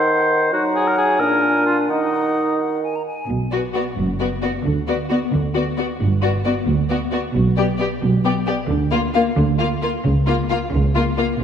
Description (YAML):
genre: cinematic, playful, whimsical film cue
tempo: 89 BPM (dotted quarters)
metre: 6/8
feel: straight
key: Eb minor, B minor from 3.3 s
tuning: A4 = 440 Hz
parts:
  - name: bright silver concert flute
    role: second line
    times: 0.0-3.3 s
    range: Gb5 to Bb5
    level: -27 LUFS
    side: left 2 dB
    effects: none
  - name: clear clarinet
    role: second line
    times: 0.0-3.1 s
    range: D4 to Eb4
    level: -23 LUFS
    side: left 1 dB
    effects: none
  - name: warm oboe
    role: second line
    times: 0.0-2.6 s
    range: Eb4 to C5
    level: -19 LUFS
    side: equal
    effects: none
  - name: mellow bassoon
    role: accompaniment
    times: 0.0-3.0 s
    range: Bb2 to Gb3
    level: -22 LUFS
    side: right 2 dB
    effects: none
  - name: rich chamber double bass section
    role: bass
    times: 3.3-11.4 s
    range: F#1 to D2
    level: -22 LUFS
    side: right 2 dB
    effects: none
  - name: rich symphonic cello section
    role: bass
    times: 3.3-11.4 s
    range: D2 to D3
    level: -23 LUFS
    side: right 2 dB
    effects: none
  - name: warm symphonic violin section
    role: melody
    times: 3.5-11.3 s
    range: D5 to F5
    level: -29 LUFS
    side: left 6 dB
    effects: none
  - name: rich studio violin section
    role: second line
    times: 3.5-11.2 s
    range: F4 to G4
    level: -25 LUFS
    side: left 4 dB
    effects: none
  - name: rich symphonic viola section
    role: accompaniment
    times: 3.5-11.3 s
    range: Bb3 to B3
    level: -24 LUFS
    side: left 2 dB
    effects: none
room: wet scoring stage reverb, RT60 1.8 s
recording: none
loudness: -17 LUFS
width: side -8 dB against mid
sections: 0.0-3.3 A section; 3.3-11.4 B section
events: none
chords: 0.0 Ebm; 0.5 Ebm/Gb; 1.2 Bb7; 1.9 Ebm; 3.3 Bm; 4.7 Bm/D; 6.0 Gmaj7; 7.4 G/B; 8.7 Bb/D; 10.0 Bbm/Db